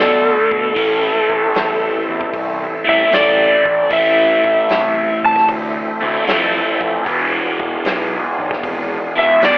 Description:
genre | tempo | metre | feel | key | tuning
blues rock power trio and southern rock | 76 BPM | 4/4 | swing 68% on 8ths | A minor | A4 = 440 Hz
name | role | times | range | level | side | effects
overdriven slide guitar | melody | 0.0-9.6 s | A4 to A5 | -14 LUFS | equal | none
overdriven tonewheel organ | sustained chords | 0.0-9.6 s | A3 to Bb4 | -25 LUFS | right 1 dB | slow rotary speaker, chorus vibrato
crunchy overdriven guitar | riff | 0.0-9.6 s | E2 to D4 | -18 LUFS | equal | phaser
fuzz fingered electric bass | bass | 0.0-9.6 s | E1 to B2 | -25 LUFS | equal | overdrive
vintage drum kit | drums | 0.5-9.6 s | hi-hat, kick drum, snare drum | -25 LUFS | equal | none
room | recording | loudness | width
light reverb | telephone sound | -13 LUFS | side -22 dB against mid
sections
0.0-9.6 A section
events
electric slide guitar solo 0.0-9.6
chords
0.0 Dm; 0.8 Am; 7.1 E7b9

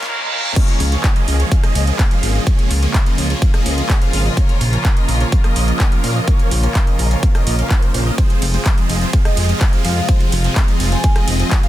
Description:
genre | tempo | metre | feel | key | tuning
EDM, festival progressive house | 126 BPM | 4/4 | straight | unclear | A4 = 440 Hz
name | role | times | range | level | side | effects
electric guitar at the edge of break-up | accompaniment | 0.0-0.5 s | Bb2 to Bb4 | -29 LUFS | left 1 dB | sidechain pumping, ping-pong delay
clear studio string section | sustained chords | 0.0-11.7 s | C3 to F4 | -26 LUFS | left 1 dB | sidechain pumping
supersaw chords | riff | 0.0-11.7 s | F3 to F5 | -22 LUFS | right 1 dB | phaser, sidechain pumping, ping-pong delay
pop drum kit | drums | 0.0-11.7 s | crash cymbal, handclaps, hi-hat, ride cymbal, rim click, snare drum | -24 LUFS | right 1 dB | none
riser and reverse cymbal | sound effects | 0.0-0.6 s | none | -26 LUFS | right 5 dB | none
electronic kick drum | drums | 0.6-11.6 s | none | -14 LUFS | equal | high-pass filter on kick
fat analog bass | bass | 0.8-11.4 s | F1 to Bb2 | -17 LUFS | equal | sidechain pumping
vibraphone with soft mallets | melody | 9.3-11.7 s | Eb5 to Ab5 | -29 LUFS | equal | ping-pong delay
room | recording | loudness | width
little or no reverb | dense, heavily limited modern master, high-pass filter | -13 LUFS | side -14 dB against mid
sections
0.6-11.7 A section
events
reverse cymbal 0.0-0.6; break 0.1-0.6; drop 0.6-11.7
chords
0.0 Bbm; 0.6 Db6; 4.4 Bbm; 8.2 Fm

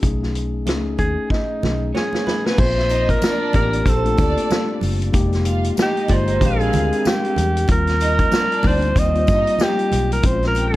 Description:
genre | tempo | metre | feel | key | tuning
lush 1970s-style soul | 94 BPM | 4/4 | swing 58% on 16ths | Bb major | A4 = 440 Hz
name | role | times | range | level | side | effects
mellow tine electric piano | accompaniment | 0.0-10.8 s | G3 to Bb4 | -24 LUFS | left 4 dB | none
vintage muted fingered electric bass | bass | 0.0-10.8 s | F1 to G2 | -21 LUFS | equal | none
vintage drum kit | drums | 0.0-10.8 s | crash cymbal, hi-hat, kick drum, snare drum | -21 LUFS | equal | none
congas | percussion | 0.0-10.4 s | none | -30 LUFS | right 5 dB | none
breathy alto saxophone | melody | 1.0-10.8 s | D#4 to Eb5 | -21 LUFS | right 1 dB | none
electric guitar through a small old amp | riff | 1.9-7.5 s | B3 to D5 | -29 LUFS | right 6 dB | tremolo
dark studio violin section | second line | 2.9-10.8 s | C4 to G5 | -28 LUFS | right 2 dB | analog delay
tambourine | percussion | 2.9-10.7 s | none | -39 LUFS | left 7 dB | none
room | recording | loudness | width
small room ambience | dark, warm production | -16 LUFS | side -16 dB against mid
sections
0.0-2.6 A section; 2.6-10.8 B section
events
drum fill 1.3-2.6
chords
0.0 B13; 2.6 Bbmaj9; 5.1 Fm11; 6.4 Bb13; 7.7 Eb6; 10.2 Bbm7

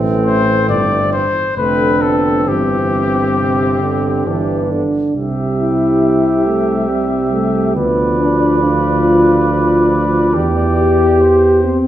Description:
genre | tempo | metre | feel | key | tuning
classical, brass quintet | 68 BPM | 3/4 | uneven beats | C major | A4 = 439 Hz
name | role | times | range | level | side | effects
warm flugelhorn | second line | 0.0-11.8 s | C4 to B4 | -21 LUFS | right 3 dB | none
mellow French horn | accompaniment | 0.0-11.9 s | G3 to G4 | -16 LUFS | left 2 dB | none
mellow euphonium | accompaniment | 0.0-11.8 s | C3 to F3 | -20 LUFS | right 2 dB | none
mellow tuba | bass | 0.0-11.8 s | F1 to E2 | -18 LUFS | right 2 dB | none
warm trumpet | melody | 0.3-11.8 s | G4 to E5 | -20 LUFS | left 4 dB | none
room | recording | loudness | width
wet recital hall reverb, RT60 1.5 s | heard from further back in the room | -12 LUFS | side -12 dB against mid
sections
0.0-5.2 A section; 5.2-11.9 B section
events
none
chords
0.0 Am; 1.6 Dm7/F; 2.5 C/G; 4.3 G; 5.2 C; 7.8 Bdim/D; 10.4 C/E

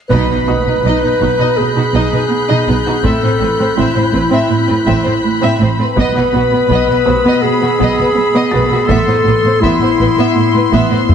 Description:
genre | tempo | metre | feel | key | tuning
cinematic, suspense film score | 82 BPM | 4/4 | straight | unclear | A4 = 440 Hz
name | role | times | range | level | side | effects
dark studio violin section | melody | 0.1-11.1 s | B5 to C6 | -21 LUFS | left 1 dB | none
warm clarinet | second line | 0.1-11.1 s | E4 to B4 | -15 LUFS | left 2 dB | none
warm studio violin section | second line | 0.1-11.0 s | F#4 to E5 | -22 LUFS | left 1 dB | none
warm symphonic viola section | accompaniment | 0.1-11.0 s | B3 to D#4 | -19 LUFS | right 1 dB | none
rich studio cello section | riff | 0.1-11.1 s | A2 to B3 | -20 LUFS | right 3 dB | none
rich studio cello section | bass | 0.1-11.0 s | A2 to B2 | -19 LUFS | right 2 dB | none
rich studio double bass section | bass | 0.1-10.8 s | A1 to B1 | -21 LUFS | right 3 dB | none
taiko ensemble | drums | 0.1-11.1 s | none | -19 LUFS | equal | none
impact | sound effects | 0.1-3.0 s | none | barely audible | none | none
warm studio violin section | texture | 0.1-11.1 s | D#6 to G6 | -27 LUFS | left 4 dB | none
felt-muted upright piano | texture | 0.5-11.1 s | C5 to A6 | -28 LUFS | left 2 dB | none
room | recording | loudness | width
moderate scoring stage reverb, RT60 1.6 s | heavily compressed radio sound | -10 LUFS | side -8 dB against mid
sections
0.1-11.1 A section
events
band accent 0.1-0.8; impact 0.1-3.0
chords
0.1 B; 3.0 Amadd9; 6.0 B; 8.9 Amadd9

